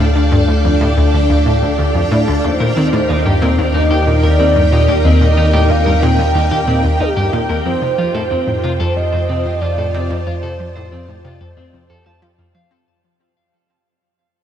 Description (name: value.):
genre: ambient, sequencer-driven space music.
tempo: 92 BPM.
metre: 4/4.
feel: straight.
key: unclear.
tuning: A4 = 437 Hz.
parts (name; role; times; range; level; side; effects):
string machine, full ensemble; sustained chords; 0.0-12.9 s; D4 to A5; -19 LUFS; equal; ensemble chorus, shimmer reverb.
analog pluck; riff; 0.0-12.8 s; D2 to C4; -18 LUFS; equal; chorus, ping-pong delay.
round analog bass; bass; 0.0-12.8 s; D2 to F2; -16 LUFS; equal; none.
bubbling stepped-filter texture; texture; 0.0-12.9 s; G4 to G5; -29 LUFS; equal; chorus, built-in reverb, shimmer reverb.
mellow horn-like synth lead; melody; 2.4-12.2 s; G4 to G5; -20 LUFS; right 1 dB; lush chorus, shimmer reverb, ping-pong delay.
clean electric guitar; arpeggios; 2.6-12.7 s; C4 to A5; -22 LUFS; left 2 dB; auto-pan, shimmer reverb, ping-pong delay.
room: moderate huge ambient reverb, RT60 8.6 s.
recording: cassette tape.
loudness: -12 LUFS.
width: side -9 dB against mid.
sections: 0.0-12.9 A section.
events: fade-in on synth texture 0.0-12.9; fade-out 5.9-12.9.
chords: 0.0 Dm; 2.4 Eb6; 7.7 F.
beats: 0.48 1.14 1.79 | 2.44 3.09 3.75 4.40 | 5.05 5.70 6.35 7.01 | 7.66 8.31 8.96 9.62 | 10.27 10.92 11.57 12.22.